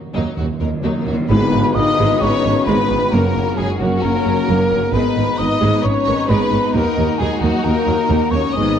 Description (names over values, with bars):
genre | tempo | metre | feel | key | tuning
cinematic, heroic adventure film score | 132 BPM | 4/4 | straight | Eb minor | A4 = 441 Hz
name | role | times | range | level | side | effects
timpani | percussion | 0.0-1.3 s | Eb3 | -25 LUFS | right 1 dB | none
clear symphonic violin section | melody | 0.1-8.8 s | Eb4 to Eb5 | -25 LUFS | left 4 dB | none
warm symphonic violin section | second line | 0.1-8.8 s | Bb3 to Cb5 | -27 LUFS | left 4 dB | none
rich studio viola section | accompaniment | 0.1-8.8 s | Eb3 to Eb4 | -23 LUFS | right 1 dB | none
warm symphonic cello section | bass | 0.1-8.8 s | Eb2 to Ab2 | -22 LUFS | right 2 dB | none
rich symphonic double bass section | bass | 0.2-8.8 s | Gb1 to Eb2 | -23 LUFS | right 3 dB | none
mellow hollow silver concert flute | second line | 1.3-8.8 s | Gb5 to Eb6 | -23 LUFS | left 2 dB | none
mellow French horn section | sustained chords | 1.3-8.8 s | Gb3 to Eb4 | -22 LUFS | left 5 dB | none
dark trumpet section | stabs | 1.3-8.8 s | Gb4 to Eb5 | -24 LUFS | right 2 dB | none
tam-tam | percussion | 1.3-3.1 s | none | -27 LUFS | left 1 dB | none
room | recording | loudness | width
wet scoring stage reverb, RT60 1.8 s | worn, warbling old tape, cassette tape, warbly pitch drift | -14 LUFS | side -8 dB against mid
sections
0.0-1.3 A section; 1.3-8.8 B section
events
timpani fill 0.0-1.3; band accent 1.3-1.8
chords
0.0 Ebm; 1.3 Abm; 3.1 Gb; 4.9 Abm; 6.7 Ebm